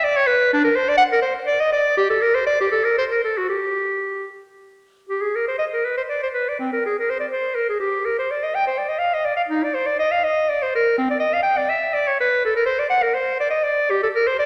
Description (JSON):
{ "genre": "classical, baroque-style fantasia for unaccompanied clarinet", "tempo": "82 BPM (dotted quarters)", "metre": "6/8", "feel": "rubato", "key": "G minor, C minor from 5.1 s", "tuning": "A4 = 440 Hz", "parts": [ { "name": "bright clarinet", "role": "solo", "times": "0.0-14.5 s", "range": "C4 to G5", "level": "-20 LUFS", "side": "equal", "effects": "none" } ], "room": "wet scoring stage reverb, RT60 1.7 s", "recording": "none", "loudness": "-20 LUFS", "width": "mono", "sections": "0.0-5.1 A section; 5.1-14.5 A section", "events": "none", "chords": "none", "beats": "| 0.54 1.26 | 1.99 2.75 | 3.52 4.30 | 5.09 5.83 | 6.60 7.34 | 8.07 8.79 | 9.51 10.23 | 10.97 11.71 | 12.44 13.16 | 13.90" }